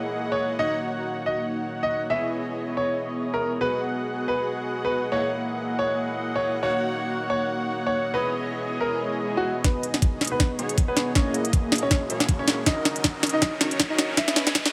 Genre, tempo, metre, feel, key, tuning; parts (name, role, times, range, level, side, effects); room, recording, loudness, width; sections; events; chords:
future bass; 159 BPM; 4/4; swing 56% on 16ths, half-time; G# minor; A4 = 441 Hz
big bright polysynth; riff; 0.0-14.7 s; A#3 to F#5; -30 LUFS; equal; lush chorus, sidechain pumping
warm concert grand piano; melody; 0.3-14.3 s; B3 to E5; -30 LUFS; equal; sidechain pumping, low-pass filter, tape echo
swell and riser; sound effects; 9.0-14.7 s; -38 LUFS; equal
electronic kick drum; drums; 9.6-14.6 s; -25 LUFS; equal; studio reverb
trap drum kit; drums; 9.6-14.7 s; hi-hat, snare drum; -26 LUFS; equal; studio reverb
light reverb, digital ambience; high-pass filter; -25 LUFS; mono
0.0-9.6 A section; 9.6-14.7 B section
swell 9.0-9.6; build-up 9.6-14.7; drum fill 9.6-14.7; filter sweep on analog polysynth 9.6-14.7; filter sweep 9.6-14.7
0.0 F#13; 0.6 D#m7; 2.1 C#m9; 3.6 G#m7; 5.1 F#13; 6.6 D#m7; 8.1 C#m9; 9.6 G#m7; 11.2 F#13; 12.7 D#m7; 14.2 C#m9